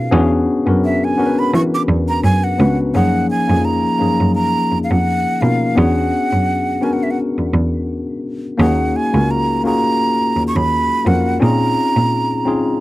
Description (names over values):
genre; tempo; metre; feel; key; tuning
R&B, neo-soul; 85 BPM; 4/4; swing 55% on 16ths; F# major; A4 = 440 Hz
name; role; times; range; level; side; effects
breathy jazz flute; melody; 0.0-12.8 s; E5 to D6; -19 LUFS; right 2 dB; none
tine electric piano; accompaniment; 0.0-12.8 s; E#3 to B4; -17 LUFS; left 2 dB; none
clear cello; bass; 0.0-12.6 s; C#2 to E3; -17 LUFS; right 1 dB; none
room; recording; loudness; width
little or no reverb; dry, close 1970s-style studio recording; -14 LUFS; side -17 dB against mid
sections
0.0-2.9 A section; 2.9-12.8 B section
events
flute solo 0.0-2.9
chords
0.1 E9; 2.9 F#maj9; 5.8 E9; 8.6 D#m9; 11.4 A#m7